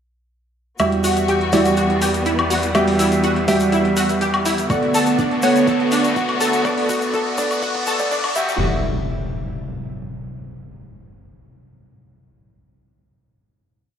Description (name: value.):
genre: progressive house.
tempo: 123 BPM.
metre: 4/4.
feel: straight.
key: E dorian.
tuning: A4 = 439 Hz.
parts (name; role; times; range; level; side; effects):
clear studio string section; sustained chords; 0.8-8.6 s; D3 to F#4; -23 LUFS; left 2 dB; sidechain pumping.
analog pluck; arpeggios; 0.8-8.6 s; D4 to A4; -22 LUFS; left 1 dB; ensemble chorus, sidechain pumping, tape echo.
dark concert grand piano; stabs; 0.8-8.5 s; G3 to E5; -19 LUFS; right 2 dB; sidechain pumping, low-pass filter, tape echo.
saturated sub bass; bass; 0.8-8.6 s; B1 to E2; -30 LUFS; left 1 dB; sidechain pumping.
deep house drum kit; drums; 0.8-8.5 s; crash cymbal, hi-hat, woodblock; -27 LUFS; left 3 dB; overdrive.
tube shaker; percussion; 0.8-8.6 s; none; -33 LUFS; left 4 dB; none.
riser and impact; sound effects; 4.0-10.3 s; none; -29 LUFS; left 1 dB; none.
electronic kick drum; drums; 4.7-8.5 s; none; -28 LUFS; equal; overdrive.
room: moderate lush hall reverb, RT60 2.2 s.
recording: played on a big sound system in a bare room, large studio reverb, high-pass filter.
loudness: -16 LUFS.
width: side -8 dB against mid.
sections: 0.8-8.6 build; 8.6-10.6 final hit.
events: build-up 0.8-8.6; filter sweep on grand piano 0.8-8.6; filter sweep 0.8-8.6; riser 4.0-8.6; drum fill 4.7-8.6.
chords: 0.8 Emadd9; 4.7 Bm7; 8.4 Emadd9; 8.6 N.C..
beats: | 0.80 1.28 1.77 2.26 | 2.75 3.23 3.72 4.21 | 4.70 5.19 5.67 6.16 | 6.65 7.14 7.63 8.11 | 8.60 9.09 9.58 10.06.